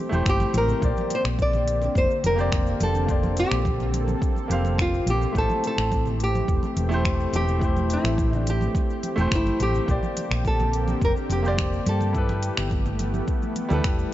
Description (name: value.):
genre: sunset chillout.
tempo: 106 BPM.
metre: 4/4.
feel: straight.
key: unclear.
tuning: A4 = 440 Hz.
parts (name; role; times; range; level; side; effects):
nylon-string guitar; melody; 0.0-13.8 s; E4 to D5; -27 LUFS; equal; digital delay.
clear grand piano; accompaniment; 0.0-14.1 s; G3 to F5; -30 LUFS; moving between left 4 dB and right 4 dB; auto-pan, digital delay.
lush unison pad; sustained chords; 0.0-14.1 s; D3 to A4; -31 LUFS; left 1 dB; chorus.
hollow-body short-scale fingered electric bass; bass; 0.1-14.0 s; E1 to G2; -25 LUFS; equal; none.
deep house drum kit; drums; 0.1-14.1 s; cabasa, finger snaps, hi-hat; -32 LUFS; equal; none.
congas; percussion; 0.1-13.8 s; none; -34 LUFS; right 2 dB; none.
electronic kick drum; drums; 0.3-14.0 s; none; -26 LUFS; equal; none.
room: light reverb, studio reverb.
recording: nothing above 7.7 kHz.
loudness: -21 LUFS.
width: side -14 dB against mid.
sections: 0.0-14.1 A section.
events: none.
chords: 0.0 Am7; 0.8 Bb69; 5.4 Am7; 9.9 Bb69; 12.1 G69.